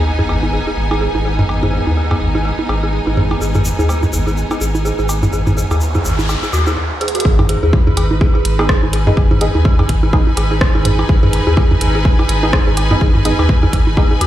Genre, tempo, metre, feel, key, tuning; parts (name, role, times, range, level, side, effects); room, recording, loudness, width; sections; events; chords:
minimal techno; 125 BPM; 4/4; swing 58% on 16ths; G# minor; A4 = 440 Hz
saturated sub bass; bass; 0.0-14.3 s; G#1 to D#2; -17 LUFS; equal; tube saturation, sidechain pumping
sub drop and noise sweep; sound effects; 0.0-1.5, 5.5-7.3 s; -26 LUFS; equal
clear studio string section; texture; 0.0-14.3 s; B3 to G#5; -22 LUFS; left 1 dB; sidechain pumping
pulsing gated texture; texture; 0.1-6.8 s; G#3 to G#4; -31 LUFS; left 2 dB
dark detuned synth bell; riff; 0.2-14.3 s; F#4 to G#4; -22 LUFS; right 1 dB; chorus, phaser, sidechain pumping, low-pass filter, digital delay
electronic toms, bongos and cowbell; percussion; 0.2-14.2 s; -19 LUFS; right 1 dB; ping-pong delay
egg shaker; percussion; 3.4-6.7 s; -28 LUFS; left 2 dB
house drum kit; drums; 7.0-14.3 s; hi-hat, rim click; -22 LUFS; right 1 dB; overdrive
electronic kick drum; drums; 7.3-14.1 s; -14 LUFS; equal; overdrive
filtered dub chord stab; stabs; 8.6-14.1 s; B3 to G#4; -23 LUFS; right 1 dB; wide subtle chorus, ping-pong delay
light reverb; played on a big sound system in a bare room, large studio reverb; -12 LUFS; side -13 dB against mid
0.0-7.3 A section; 7.3-14.3 B section
impact 0.0-1.5; noise sweep 5.5-7.3; break 6.8-7.3; drum fill 7.0; drop 7.3-14.3
0.0 G#m